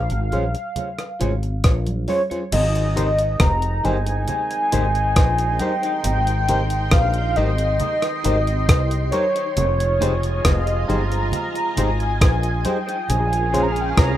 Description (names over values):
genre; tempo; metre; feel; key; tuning
lovers rock reggae; 68 BPM; 4/4; straight; unclear; A4 = 438 Hz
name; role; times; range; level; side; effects
warm velvety synth lead; melody; 0.0-14.2 s; Db5 to Bb5; -23 LUFS; equal; chorus, tape echo
woody fretless electric bass; bass; 0.0-14.2 s; F1 to C2; -21 LUFS; equal; ensemble chorus
crisp 8-bit digital drum machine; drums; 0.1-14.2 s; crash cymbal, hi-hat, kick drum, rim click; -20 LUFS; equal; none
FM electric piano; accompaniment; 0.3-13.7 s; Db4 to C5; -28 LUFS; left 4 dB; chorus, tape echo
electric guitar through a small old amp; stabs; 0.3-13.6 s; Eb4 to Db5; -32 LUFS; right 2 dB; tape echo
congas; percussion; 0.3-13.7 s; none; -32 LUFS; right 3 dB; tape echo
mellow horn section; second line; 2.5-14.2 s; C3 to Ab4; -32 LUFS; right 5 dB; none
string machine, full ensemble; second line; 4.3-14.2 s; Db4 to C6; -31 LUFS; equal; ensemble chorus
room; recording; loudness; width
light reverb; rough home demo mix; -18 LUFS; side -12 dB against mid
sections
0.0-2.5 A section; 2.5-14.2 B section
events
none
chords
0.0 Bbm7; 2.5 Fm7; 13.1 Bbm7